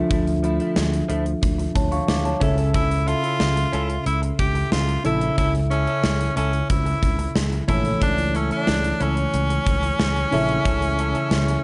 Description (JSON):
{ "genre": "1980s-style pop", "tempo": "91 BPM", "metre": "4/4", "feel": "straight", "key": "unclear", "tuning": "A4 = 440 Hz", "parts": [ { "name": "mellow tine electric piano", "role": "accompaniment", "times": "0.0-11.6 s", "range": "C#3 to D6", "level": "-27 LUFS", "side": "equal", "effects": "none" }, { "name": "direct-recorded clean electric guitar", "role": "riff", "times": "0.0-11.5 s", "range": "F3 to A4", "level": "-34 LUFS", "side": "equal", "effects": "lush chorus" }, { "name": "sustaining fretless electric bass", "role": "bass", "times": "0.1-11.6 s", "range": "Bb1 to D2", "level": "-27 LUFS", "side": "equal", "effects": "none" }, { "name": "gated 80s drum kit", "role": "drums", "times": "0.1-11.6 s", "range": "hi-hat, kick drum, snare drum", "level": "-26 LUFS", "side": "equal", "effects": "gated reverb" }, { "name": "edgy tenor saxophone", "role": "melody", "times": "2.8-11.6 s", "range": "C#4 to G4", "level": "-27 LUFS", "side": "equal", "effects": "none" } ], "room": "moderate studio ambience, RT60 0.5 s", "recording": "nothing above 10.9 kHz", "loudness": "-21 LUFS", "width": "mono", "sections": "0.0-11.6 A section", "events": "none", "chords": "0.0 Dmadd9; 2.4 A", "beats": "| 0.11 0.77 1.43 2.08 | 2.74 3.40 4.06 4.72 | 5.38 6.04 6.70 7.36 | 8.02 8.68 9.34 10.00 | 10.65 11.31" }